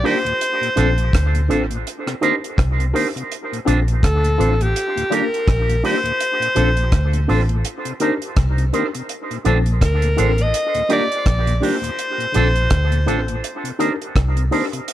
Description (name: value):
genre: lovers rock reggae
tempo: 83 BPM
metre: 4/4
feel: swing 58% on 16ths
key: Bb major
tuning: A4 = 436 Hz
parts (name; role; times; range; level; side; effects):
- breathy alto saxophone; melody; 0.0-13.8 s; G4 to Eb5; -21 LUFS; equal; tape echo
- tine electric piano; accompaniment; 0.0-14.8 s; Bb3 to Bb4; -27 LUFS; left 4 dB; overdrive, fast stereo tremolo, dub echo
- tonewheel organ; accompaniment; 0.0-14.8 s; Eb2 to D4; -28 LUFS; left 5 dB; chorus vibrato, slow rotary speaker
- electric guitar with an envelope filter; stabs; 0.0-14.8 s; D4 to C5; -24 LUFS; right 6 dB; dub echo
- deep reggae drum kit; drums; 0.1-14.9 s; hi-hat, kick drum, rim click; -22 LUFS; equal; dub echo
- vintage muted fingered electric bass; bass; 0.8-14.5 s; A1 to D2; -18 LUFS; equal; none
room: light reverb, small room ambience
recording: none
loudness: -16 LUFS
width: side -13 dB against mid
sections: 0.0-14.9 A section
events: none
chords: 0.4 Bbmaj9; 1.9 Cm7; 3.3 Bbmaj9; 4.8 Ebmaj7; 6.2 Bbmaj9; 7.6 Cm7; 9.1 Bbmaj9; 10.5 Ebmaj7; 12.0 Bbmaj9; 13.4 Cm7